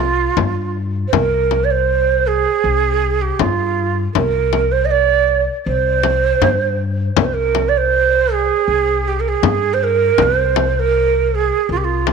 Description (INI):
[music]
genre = Turkish makam ensemble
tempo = 80 BPM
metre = 4/4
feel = straight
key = C makam ussak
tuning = A4 = 440 Hz
[part]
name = breathy ney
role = melody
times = 0.0-12.1 s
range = F4 to Eb5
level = -16 LUFS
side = right 8 dB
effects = none
[part]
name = upright bass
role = bass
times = 0.0-12.1 s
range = C2 to G2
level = -20 LUFS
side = left 3 dB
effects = none
[part]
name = frame drum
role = percussion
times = 0.4-12.1 s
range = none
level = -18 LUFS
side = left 14 dB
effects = none
[sound]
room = moderate plate reverb, RT60 2.8 s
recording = 1960s-style stereo with parts hard left and right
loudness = -14 LUFS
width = side -5 dB against mid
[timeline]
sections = 0.0-12.1 A section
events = none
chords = none